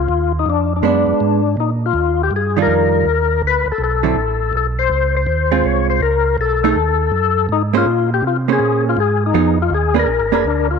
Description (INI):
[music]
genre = soul jazz organ trio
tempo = 162 BPM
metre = 4/4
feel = swing 66% on 8ths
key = unclear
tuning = A4 = 439 Hz
[part]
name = overdriven tonewheel organ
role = melody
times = 0.0-10.8 s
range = D4 to Db5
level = -17 LUFS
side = left 9 dB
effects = slow rotary speaker, chorus vibrato
[part]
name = mellow tonewheel organ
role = bass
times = 0.0-10.8 s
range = F1 to C3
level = -19 LUFS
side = right 2 dB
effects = slow rotary speaker
[part]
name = vintage hollow-body jazz guitar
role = accompaniment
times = 0.8-10.4 s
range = D3 to C5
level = -18 LUFS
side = right 16 dB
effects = none
[sound]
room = moderate spring reverb, RT60 2.6 s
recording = 1960s-style stereo with parts hard left and right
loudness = -14 LUFS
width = side -6 dB against mid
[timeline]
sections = 0.0-10.8 A section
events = none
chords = 0.5 Bb7b9; 1.9 Ebmaj9; 3.4 D5; 4.9 Dbmaj7; 6.4 B13; 7.9 Bbm9; 9.3 Fm7b5; 10.1 Bb7b9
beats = 0.09 | 0.47 0.84 1.21 1.58 | 1.95 2.32 2.69 3.06 | 3.43 3.80 4.17 4.54 | 4.91 5.28 5.65 6.02 | 6.39 6.76 7.13 7.50 | 7.87 8.23 8.60 8.97 | 9.34 9.71 10.08 10.45